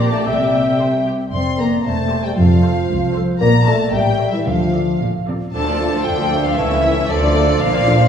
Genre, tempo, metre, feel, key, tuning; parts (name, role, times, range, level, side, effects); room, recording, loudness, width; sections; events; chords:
quick classical-period movement for symphony orchestra; 114 BPM; 2/4; rubato; F major, D minor from 3.4 s; A4 = 441 Hz
rich studio violin section; melody; 0.0-8.1 s; D5 to C6; -25 LUFS; left 3 dB
mellow hollow silver concert flute; second line; 0.0-8.1 s; A4 to A5; -23 LUFS; left 1 dB
warm studio violin section; second line; 0.0-8.1 s; C#4 to C6; -26 LUFS; left 4 dB
rich studio viola section; accompaniment; 0.0-8.1 s; D3 to E5; -26 LUFS; equal
mellow French horn section; sustained chords; 0.0-8.0 s; E3 to F4; -20 LUFS; left 2 dB
warm studio cello section; bass; 0.0-8.1 s; C2 to D3; -21 LUFS; right 1 dB
warm studio double bass section; bass; 0.0-8.1 s; E1 to D2; -21 LUFS; right 2 dB
timpani; percussion; 4.5-5.2 s; D3; -27 LUFS; equal
mellow cor anglais; second line; 5.5-8.1 s; A4 to D5; -26 LUFS; right 1 dB
mellow bassoon; accompaniment; 5.5-8.1 s; E3 to F3; -24 LUFS; right 3 dB
wet scoring stage reverb, RT60 1.7 s; recorded in a church or concert hall, small room ambience; -14 LUFS; side -8 dB against mid
0.0-5.5 A section; 5.5-8.1 B section
0.3 C; 1.3 F; 1.9 C/E; 2.4 F; 3.4 Bb; 3.9 A7; 4.5 Dm; 6.6 A/C#; 7.1 Dm